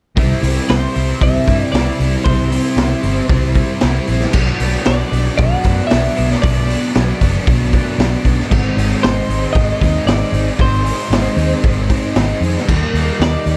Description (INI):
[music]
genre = rock, shoegaze and dream pop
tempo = 115 BPM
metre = 4/4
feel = straight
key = unclear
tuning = A4 = 440 Hz
[part]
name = overdriven electric guitar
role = riff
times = 0.2-13.6 s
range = Ab2 to E4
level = -21 LUFS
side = equal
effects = subtle chorus
[part]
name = vintage muted fingered electric bass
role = bass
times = 0.2-13.6 s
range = F#1 to G2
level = -20 LUFS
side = equal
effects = none
[part]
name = raw garage drum kit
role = drums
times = 0.2-13.6 s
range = crash cymbal, hi-hat, kick drum, snare drum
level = -20 LUFS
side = equal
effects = none
[part]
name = twelve-string electric guitar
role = melody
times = 0.7-13.6 s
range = C5 to F#5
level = -26 LUFS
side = equal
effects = analog delay
[sound]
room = little or no reverb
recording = dark, warm production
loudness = -15 LUFS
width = mono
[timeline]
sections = 0.2-13.6 A section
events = none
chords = 0.2 C; 4.3 Bm; 8.5 Ab; 12.7 Ebmaj7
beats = | 0.17 0.69 1.21 1.73 | 2.25 2.77 3.30 3.82 | 4.34 4.86 5.38 5.91 | 6.43 6.95 7.47 7.99 | 8.51 9.03 9.55 10.07 | 10.59 11.12 11.63 12.16 | 12.68 13.20